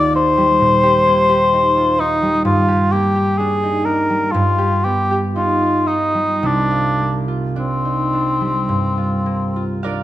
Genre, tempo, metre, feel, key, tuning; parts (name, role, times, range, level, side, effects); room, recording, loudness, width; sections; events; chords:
classical, impressionist duo for cor anglais and harp; 49-66 BPM; 4/4; rubato; C minor; A4 = 440 Hz
mellow cor anglais; melody; 0.0-9.8 s; C4 to D5; -16 LUFS; left 1 dB
concert harp; accompaniment; 0.0-10.0 s; C2 to F5; -18 LUFS; right 1 dB
moderate recital hall reverb, RT60 1.7 s; close, detailed microphones; -14 LUFS; side -14 dB against mid
0.0-10.0 A section
0.0 Eb; 2.5 Gm; 4.3 Gaug7; 6.4 Cm11